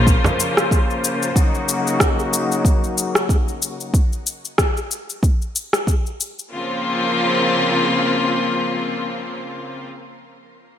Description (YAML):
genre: organic downtempo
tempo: 93 BPM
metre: 4/4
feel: swing 57% on 16ths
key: Bb minor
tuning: A4 = 441 Hz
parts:
  - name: clear studio string section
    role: sustained chords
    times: 0.0-9.9 s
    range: Db3 to C5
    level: -20 LUFS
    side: left 2 dB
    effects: sidechain pumping, low-pass filter, shimmer reverb
  - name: electronic kick drum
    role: drums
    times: 0.1-6.0 s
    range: none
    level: -17 LUFS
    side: equal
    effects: overdrive
  - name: electronic shaker and rim click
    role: drums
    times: 0.1-6.5 s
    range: none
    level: -22 LUFS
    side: left 1 dB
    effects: gated reverb
room: moderate plate reverb, RT60 1.7 s, studio reverb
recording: bright 1980s-style digital production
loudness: -17 LUFS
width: side -10 dB against mid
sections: 0.0-6.5 A section; 6.5-9.1 B section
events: filter sweep on string section 0.0-3.9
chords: 0.0 Bbmadd9; 1.4 Gb6; 6.5 Bbmadd9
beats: 0.07 0.71 | 1.36 2.00 2.65 3.29 | 3.94 4.58 5.23 5.87 | 6.52 7.16 7.81 8.45